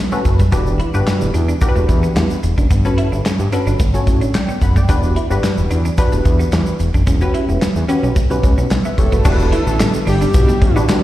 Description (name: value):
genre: early-eighties boogie funk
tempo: 110 BPM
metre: 4/4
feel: straight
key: E dorian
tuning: A4 = 440 Hz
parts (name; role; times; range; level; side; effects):
- funky polysynth comp; accompaniment; 0.1-11.0 s; C#4 to B5; -21 LUFS; left 1 dB; chorus, slapback echo
- electric guitar at the edge of break-up; riff; 0.1-11.0 s; G3 to E4; -26 LUFS; right 4 dB; ensemble chorus, slapback echo
- tube shaker; percussion; 0.1-11.0 s; none; -36 LUFS; right 4 dB; none
- fat analog bass; bass; 0.3-10.8 s; E1 to G2; -16 LUFS; equal; none
- modern studio drum kit; drums; 0.3-11.0 s; crash cymbal, handclaps, hi-hat, kick drum, snare drum; -17 LUFS; equal; none
- fat analog lead; melody; 9.0-11.0 s; D4 to A4; -20 LUFS; equal; slapback echo, tape echo
- string machine, full ensemble; sustained chords; 9.3-11.0 s; D3 to E4; -25 LUFS; equal; none
room: small room ambience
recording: live gig heard through the venue's PA, recital hall reverb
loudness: -13 LUFS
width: side -14 dB against mid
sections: 0.0-9.3 A section; 9.3-11.0 B section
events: none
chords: 0.0 Gmaj9#11; 0.5 Em7; 2.7 Gmaj9#11; 4.9 Em7; 7.1 Em69; 9.3 Em7